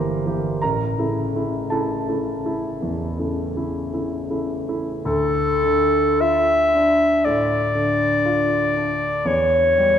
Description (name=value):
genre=classical, romantic duo for clarinet and grand piano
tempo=50-60 BPM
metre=4/4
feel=rubato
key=unclear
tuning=A4 = 440 Hz
part: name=warm grand piano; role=accompaniment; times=0.0-10.0 s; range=G1 to D6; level=-22 LUFS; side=equal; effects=none
part: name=warm clarinet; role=melody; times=5.1-10.0 s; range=A4 to E5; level=-17 LUFS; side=left 1 dB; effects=none
room=wet concert hall reverb, RT60 1.7 s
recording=recorded in a church or concert hall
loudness=-18 LUFS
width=side -9 dB against mid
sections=0.0-5.0 A section; 5.0-10.0 B section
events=none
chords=0.0 Edim/G; 0.6 A; 5.0 Dm; 9.3 C#dim/E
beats=| 0.62 1.71 2.82 3.92 | 5.04 6.21 7.25 8.26 | 9.26